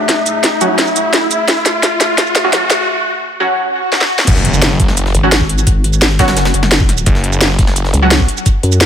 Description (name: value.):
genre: dark technical drum and bass.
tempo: 172 BPM.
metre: 4/4.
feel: straight.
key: F# minor.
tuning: A4 = 440 Hz.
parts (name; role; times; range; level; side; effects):
dark analog pad; sustained chords; 0.0-2.8 s; A3 to E5; -20 LUFS; left 2 dB; lush chorus, sidechain pumping.
riser, swell and impact; sound effects; 0.0-5.7 s; none; -17 LUFS; equal; none.
drum and bass drum kit; drums; 0.1-8.9 s; crash cymbal, hi-hat, shaker, snare drum; -14 LUFS; equal; none.
electronic kick drum; drums; 0.1-8.5 s; none; -14 LUFS; equal; high-pass filter on kick, high-pass filter on room.
orchestra-hit-like synth stab; stabs; 0.6-8.1 s; F#3 to F#4; -18 LUFS; right 1 dB; built-in reverb, vintage 12-bit sampler grit, ping-pong delay.
snarling distorted saw bass; bass; 4.3-7.9 s; F#1; -15 LUFS; equal; distortion, overdrive.
jungle sampler-style drum kit; drums; 4.3-8.9 s; hi-hat, snare drum; -24 LUFS; equal; high-pass filter on hats, high-pass filter on snare, high-pass filter on room.
vowel-sweep wobble bass; bass; 5.1-8.9 s; F#1 to F#2; -13 LUFS; equal; chorus.
room: light reverb.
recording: high-pass filter.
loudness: -10 LUFS.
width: side -9 dB against mid.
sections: 0.0-4.3 A section; 4.3-8.9 B section.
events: build-up 0.0-4.3; drum fill 0.0-2.9, 3.9-4.3; riser 0.0-2.9; filter sweep on synth stab 0.0-4.3; break 2.9-4.3; swell 3.7-4.3; drop 4.3-8.9; impact 4.3-5.7.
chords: 0.0 F#madd9; 4.3 F#sus2.